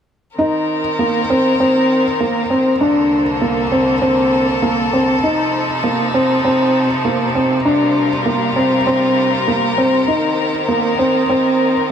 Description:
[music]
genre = electronica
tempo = 99 BPM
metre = 4/4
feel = straight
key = C dorian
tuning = A4 = 439 Hz
[part]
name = clear string quartet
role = sustained chords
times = 0.4-11.9 s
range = C2 to Bb4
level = -18 LUFS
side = left 1 dB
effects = shimmer reverb
[part]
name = felt-muted upright piano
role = riff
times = 0.4-11.7 s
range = Bb3 to Eb4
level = -15 LUFS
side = equal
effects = digital delay, shimmer reverb
[sound]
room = wet huge ambient reverb, RT60 7.6 s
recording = none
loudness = -13 LUFS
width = side -8 dB against mid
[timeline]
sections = 0.4-11.9 A section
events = none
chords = 0.4 Cm7; 2.8 Bbmaj7/C; 5.2 F7/C; 7.7 Gm7/C; 10.1 Cm7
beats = | 0.38 0.99 1.59 2.20 | 2.81 3.41 4.02 4.62 | 5.23 5.84 6.44 7.05 | 7.66 8.26 8.87 9.47 | 10.08 10.69 11.29 11.90

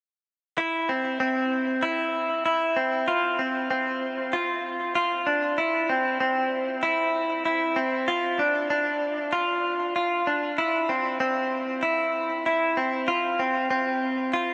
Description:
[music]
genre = dream pop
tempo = 96 BPM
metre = 4/4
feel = straight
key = unclear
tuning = A4 = 440 Hz
[part]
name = direct-recorded clean electric guitar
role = arpeggios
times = 0.6-14.5 s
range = C4 to F4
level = -25 LUFS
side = equal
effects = lush chorus, digital delay
[sound]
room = wet huge ambient reverb, RT60 7.6 s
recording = none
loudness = -25 LUFS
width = mono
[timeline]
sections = 0.6-14.5 A section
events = none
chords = none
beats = | 0.58 1.20 1.83 2.45 | 3.08 3.70 4.33 4.95 | 5.58 6.20 6.83 7.45 | 8.08 8.70 9.33 9.95 | 10.58 11.20 11.83 12.45 | 13.08 13.70 14.33

